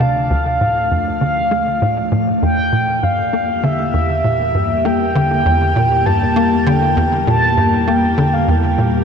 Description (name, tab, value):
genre	ambient, sequencer-driven space music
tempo	99 BPM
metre	4/4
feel	straight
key	unclear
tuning	A4 = 440 Hz
part	mellow horn-like synth lead	melody	0.0-9.0 s	E5 to A5	-17 LUFS	equal	chorus, shimmer reverb, tape echo
part	evolving wavetable pad	sustained chords	0.0-9.0 s	E3 to D5	-21 LUFS	left 1 dB	ensemble chorus, built-in reverb, phaser, shimmer reverb
part	tight sequencer bass	riff	0.0-9.0 s	D2 to Bb3	-17 LUFS	equal	ensemble chorus, shimmer reverb, tape echo
part	warm sub bass	bass	0.0-9.0 s	D2 to E2	-26 LUFS	equal	none
room	wet cathedral reverb, RT60 5.3 s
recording	dreamy mix soaked in reverb, cassette tape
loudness	-13 LUFS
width	side -6 dB against mid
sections	0.0-9.0 A section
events	none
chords	0.0 Dm; 2.4 Edim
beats	| 0.00 0.60 1.21 1.82 | 2.42 3.03 3.63 4.24 | 4.85 5.45 6.06 6.67 | 7.27 7.88 8.48